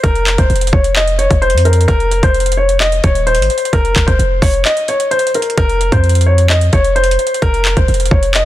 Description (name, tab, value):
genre	hip hop, trap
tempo	130 BPM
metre	4/4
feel	half-time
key	unclear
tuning	A4 = 438 Hz
part	dark concert grand piano	melody	0.0-8.4 s	Bb4 to Eb5	-14 LUFS	left 2 dB	ping-pong delay
part	warm 808-style bass	bass	0.0-8.4 s	Eb1 to F2	-14 LUFS	equal	none
part	trap drum kit	drums	0.0-8.4 s	handclaps, hi-hat, kick drum	-15 LUFS	equal	vintage 12-bit sampler grit
room	little or no reverb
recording	dense, heavily limited modern master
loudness	-10 LUFS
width	side -14 dB against mid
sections	0.0-8.4 A section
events	kick muted 4.7-5.6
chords	0.0 F5